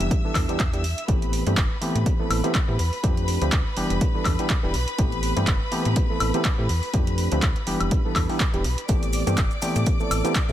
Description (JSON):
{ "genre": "filtered disco house", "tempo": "123 BPM", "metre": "4/4", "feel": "swing 56% on 16ths", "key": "A minor", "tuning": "A4 = 440 Hz", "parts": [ { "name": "overdriven reed electric piano", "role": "accompaniment", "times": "0.0-10.5 s", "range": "E3 to A4", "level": "-27 LUFS", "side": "equal", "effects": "phaser, sidechain pumping" }, { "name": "clear studio violin section", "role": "sustained chords", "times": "0.0-10.5 s", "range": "B4 to E6", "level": "-32 LUFS", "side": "left 2 dB", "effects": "sidechain pumping" }, { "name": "slap-like FM bass", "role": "bass", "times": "0.0-10.5 s", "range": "E1 to A2", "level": "-25 LUFS", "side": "equal", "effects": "sidechain pumping" }, { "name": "punchy analog drum machine", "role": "drums", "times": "0.0-10.5 s", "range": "handclaps, hi-hat, woodblock", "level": "-28 LUFS", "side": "equal", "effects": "none" }, { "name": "electronic kick drum", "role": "drums", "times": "0.1-10.5 s", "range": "none", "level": "-23 LUFS", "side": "equal", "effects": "none" }, { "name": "maracas", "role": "percussion", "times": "8.9-10.5 s", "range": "none", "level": "-37 LUFS", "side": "left 1 dB", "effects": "sidechain pumping on perc" } ], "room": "digital ambience", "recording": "none", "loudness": "-20 LUFS", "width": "side -12 dB against mid", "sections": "0.0-10.5 A section", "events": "none", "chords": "0.1 Em7; 1.1 Am7; 3.0 F6; 4.0 Em7; 5.0 Am7; 6.9 F6; 7.9 Em7; 8.9 Am7" }